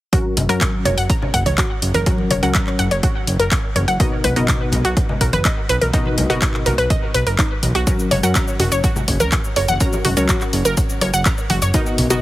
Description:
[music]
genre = progressive house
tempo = 124 BPM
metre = 4/4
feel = straight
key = F# major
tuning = A4 = 440 Hz
[part]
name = glassy wavetable pluck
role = arpeggios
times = 0.1-12.2 s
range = D#4 to A#5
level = -21 LUFS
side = right 1 dB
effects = chorus, cassette tape, sidechain pumping, tape echo
[part]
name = wide unison pluck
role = stabs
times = 0.1-12.2 s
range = B2 to D#5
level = -24 LUFS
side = left 2 dB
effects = sidechain pumping, tape echo
[part]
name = electronic kick drum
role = drums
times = 0.1-11.8 s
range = none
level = -20 LUFS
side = equal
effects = none
[part]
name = house drum kit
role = drums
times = 0.1-12.2 s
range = handclaps, hi-hat, shaker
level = -23 LUFS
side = equal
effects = none
[part]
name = fat analog bass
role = bass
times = 0.4-12.2 s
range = F#1 to F#2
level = -20 LUFS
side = equal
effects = sidechain pumping
[part]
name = congas and bongos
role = percussion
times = 0.4-12.1 s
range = none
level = -26 LUFS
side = left 1 dB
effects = sidechain pumping on perc
[sound]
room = digital ambience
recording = heavily compressed radio sound, multiband compression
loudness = -15 LUFS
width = side -16 dB against mid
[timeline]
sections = 0.1-12.2 A section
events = none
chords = 0.1 F#; 4.0 Bmaj7; 7.9 F#

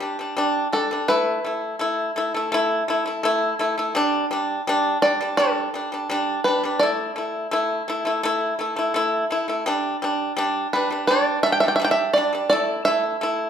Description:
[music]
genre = mongolian traditional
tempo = 84 BPM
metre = 4/4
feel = straight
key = G gong mode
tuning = A4 = 440 Hz
[part]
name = bluegrass banjo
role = melody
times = 0.0-13.5 s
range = G4 to G5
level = -20 LUFS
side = right 1 dB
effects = none
[part]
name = pipa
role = arpeggios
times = 0.0-13.5 s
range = G3 to E4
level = -22 LUFS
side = equal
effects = none
[sound]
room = wet large studio reverb, RT60 1.1 s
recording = band playing live in one room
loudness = -20 LUFS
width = side -8 dB against mid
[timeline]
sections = 0.0-13.5 A section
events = none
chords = 0.0 G5; 1.1 A5; 4.0 G5; 6.8 A5; 9.7 G5; 12.5 A5

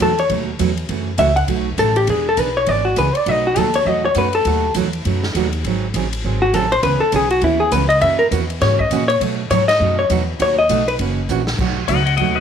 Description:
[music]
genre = country, western swing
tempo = 202 BPM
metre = 4/4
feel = swing 62% on 8ths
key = B mixolydian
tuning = A4 = 440 Hz
[part]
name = vintage hollow-body jazz guitar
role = melody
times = 0.0-10.9 s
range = E4 to F#5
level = -16 LUFS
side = left 2 dB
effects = slapback echo
[part]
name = picked steel-string acoustic guitar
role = accompaniment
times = 0.0-12.4 s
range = B2 to G#4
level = -22 LUFS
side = right 12 dB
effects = none
[part]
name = upright bass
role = bass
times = 0.0-12.4 s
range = E1 to B2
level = -21 LUFS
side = equal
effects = none
[part]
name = swinging big-band drum kit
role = drums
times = 0.0-12.3 s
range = crash cymbal, hi-hat, kick drum, ride cymbal, snare drum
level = -28 LUFS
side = left 2 dB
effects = none
[part]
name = clean lap steel guitar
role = second line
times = 11.9-12.4 s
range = B4 to F#5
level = -18 LUFS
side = left 14 dB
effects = none
[sound]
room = light reverb, small room ambience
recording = 1960s-style stereo with parts hard left and right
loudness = -15 LUFS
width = side -8 dB against mid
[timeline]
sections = 0.0-11.6 A section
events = hollow-body jazz guitar solo 0.0-11.6; drum fill 11.3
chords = 0.0 B7; 0.9 F#m7; 1.5 B7; 2.1 E7; 3.3 B7; 5.6 G#7b9; 6.8 C#m7; 8.0 F#7; 9.2 B7; 11.0 F#7; 11.6 B7

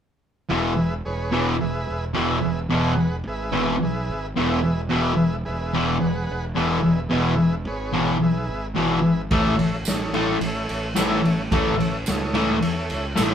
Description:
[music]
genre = garage rock duo or trio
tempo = 109 BPM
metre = 4/4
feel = straight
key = E major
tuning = A4 = 440 Hz
[part]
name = combo organ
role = sustained chords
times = 0.5-13.3 s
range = G#4 to F#5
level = -30 LUFS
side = right 2 dB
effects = none
[part]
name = fuzz guitar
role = riff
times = 0.5-13.3 s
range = E2 to A3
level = -20 LUFS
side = left 1 dB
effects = distortion
[part]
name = fuzz fingered electric bass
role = bass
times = 0.5-13.3 s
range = E1 to E2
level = -29 LUFS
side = right 1 dB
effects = overdrive, tube saturation
[part]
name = raw garage drum kit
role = drums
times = 9.3-13.3 s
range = kick drum, ride cymbal, snare drum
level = -26 LUFS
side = right 1 dB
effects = none
[part]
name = tambourine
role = percussion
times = 9.9-13.3 s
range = none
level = -33 LUFS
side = right 7 dB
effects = none
[sound]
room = wet studio ambience, RT60 0.5 s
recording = band playing live in one room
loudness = -20 LUFS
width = side -8 dB against mid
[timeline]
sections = 0.5-13.3 A section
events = none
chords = 0.5 E; 9.3 A

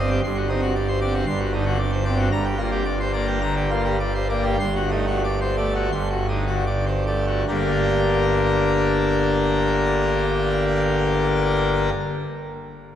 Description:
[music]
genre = classical, organ toccata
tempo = 72-116 BPM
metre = 4/4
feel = straight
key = G minor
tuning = A4 = 437 Hz
[part]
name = pipe organ, full organ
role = solo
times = 0.0-11.9 s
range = G1 to C6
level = -19 LUFS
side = equal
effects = none
[sound]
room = wet church reverb, RT60 3.3 s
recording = none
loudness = -19 LUFS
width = side -10 dB against mid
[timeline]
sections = 0.0-7.5 A section; 7.5-13.0 B section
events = slowing down 1.3-7.5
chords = 0.2 D7/G; 2.3 Gm; 4.6 D7/G; 7.5 Gm

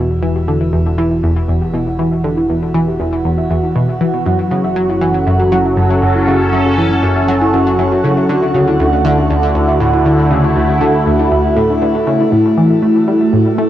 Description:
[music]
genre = ambient, sequencer-driven space music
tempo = 119 BPM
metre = 4/4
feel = straight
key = E dorian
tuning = A4 = 440 Hz
[part]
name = sweeping resonant pad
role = sustained chords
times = 0.0-13.7 s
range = D3 to C#5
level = -14 LUFS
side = right 1 dB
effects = chorus, cassette tape, shimmer reverb
[part]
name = soft round pluck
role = arpeggios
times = 0.0-13.6 s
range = B3 to E5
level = -21 LUFS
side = left 1 dB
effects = chorus, auto-pan, cassette tape, ping-pong delay, shimmer reverb
[part]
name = analog pluck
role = riff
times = 0.0-13.7 s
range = D2 to A3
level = -16 LUFS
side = left 1 dB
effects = chorus, phaser, cassette tape, ping-pong delay, shimmer reverb
[part]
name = fat analog bass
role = bass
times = 0.0-12.3 s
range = E1 to D2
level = -20 LUFS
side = equal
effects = none
[sound]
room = wet booth ambience, RT60 0.2 s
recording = home recording on cassette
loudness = -11 LUFS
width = side -12 dB against mid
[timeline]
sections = 0.0-12.3 A section; 12.3-13.7 B section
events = fade-in on synth arpeggio sound 0.0-12.3; fade-in on analog synth pad 0.0-12.3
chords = 0.0 Em; 4.3 F#m7; 8.3 Dmaj7; 12.3 Aadd9

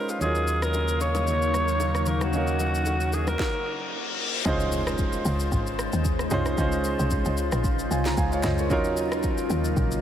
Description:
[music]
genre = amapiano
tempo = 113 BPM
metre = 4/4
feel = swing 55% on 16ths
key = Db major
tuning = A4 = 443 Hz
[part]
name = growling alto saxophone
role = melody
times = 0.0-4.0 s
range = F4 to Db5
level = -29 LUFS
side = equal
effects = tape echo
[part]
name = clear grand piano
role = accompaniment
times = 0.0-10.0 s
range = Gb3 to Bb5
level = -29 LUFS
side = right 2 dB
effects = none
[part]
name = downlifter, reverse cymbal and impact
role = sound effects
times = 3.6-6.6 s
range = none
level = -34 LUFS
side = left 3 dB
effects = none
[part]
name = afro-pop drum kit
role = drums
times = 0.1-10.0 s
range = kick drum, rim click, shaker, snare drum, toms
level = -30 LUFS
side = equal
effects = none
[part]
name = glassy FM pad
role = sustained chords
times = 0.7-10.0 s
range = Db3 to F5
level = -31 LUFS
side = left 2 dB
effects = ensemble chorus, built-in reverb, sidechain pumping
[part]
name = sub bass with octave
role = bass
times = 0.2-3.4 s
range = Eb2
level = -27 LUFS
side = equal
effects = none
[part]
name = congas and bongos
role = percussion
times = 0.2-3.4 s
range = none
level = -38 LUFS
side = left 3 dB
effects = none
[part]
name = woody log drum bass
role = bass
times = 4.5-10.0 s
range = Ab1 to Eb2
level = -28 LUFS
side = equal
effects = none
[sound]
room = moderate huge ambient reverb, RT60 9.3 s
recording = dreamy mix soaked in reverb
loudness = -23 LUFS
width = side -10 dB against mid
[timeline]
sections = 0.0-4.5 A section; 4.5-10.0 B section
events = stop 3.4-4.5; reverse cymbal 3.6-4.5; impact 4.5-6.6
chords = 0.2 Ebm9; 4.5 Dbmaj9; 8.7 Ebm9

